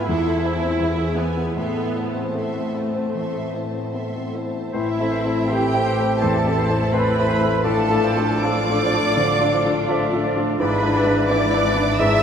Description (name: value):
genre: classical, romantic movement for piano and orchestra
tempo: 72-87 BPM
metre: 4/4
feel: rubato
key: A minor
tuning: A4 = 441 Hz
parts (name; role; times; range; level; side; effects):
- rich chamber violin section; melody; 0.0-12.2 s; E5 to E6; -30 LUFS; right 3 dB; none
- warm grand piano; melody; 0.0-12.2 s; E2 to B4; -23 LUFS; left 2 dB; none
- rich studio violin section; second line; 0.0-12.2 s; E4 to G#5; -30 LUFS; right 1 dB; none
- rich studio viola section; accompaniment; 0.0-12.2 s; A3 to F4; -27 LUFS; right 2 dB; none
- rich studio cello section; bass; 0.0-12.2 s; E2 to A2; -29 LUFS; equal; none
- clear oboe; second line; 4.7-12.2 s; C5 to D5; -34 LUFS; left 3 dB; none
- silver concert flute; second line; 4.7-12.2 s; E4 to E5; -28 LUFS; left 3 dB; none
- warm bassoon; accompaniment; 4.7-12.2 s; E3 to F3; -31 LUFS; right 5 dB; none
- mellow French horn section; sustained chords; 4.7-12.2 s; E3 to D4; -30 LUFS; right 1 dB; none
- clear trumpet; stabs; 4.7-12.2 s; E4 to E5; -25 LUFS; right 1 dB; none
- rich studio double bass section; bass; 4.7-12.2 s; G#1 to A1; -28 LUFS; right 1 dB; none
- warm clarinet; second line; 6.2-12.2 s; C5 to G5; -32 LUFS; right 2 dB; none
room: wet cathedral reverb, RT60 5.9 s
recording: in a vast, echoing space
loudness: -18 LUFS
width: side -8 dB against mid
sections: 0.0-4.7 A section; 4.7-12.2 B section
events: none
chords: 0.1 Am/E; 0.8 E; 1.6 Am; 7.6 Dm/A; 10.6 E7/G#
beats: 0.07 0.79 | 1.56 2.37 3.15 3.94 | 4.73 5.48 6.21 6.93 | 7.64 8.44 9.17 9.89 | 10.61 11.31 12.00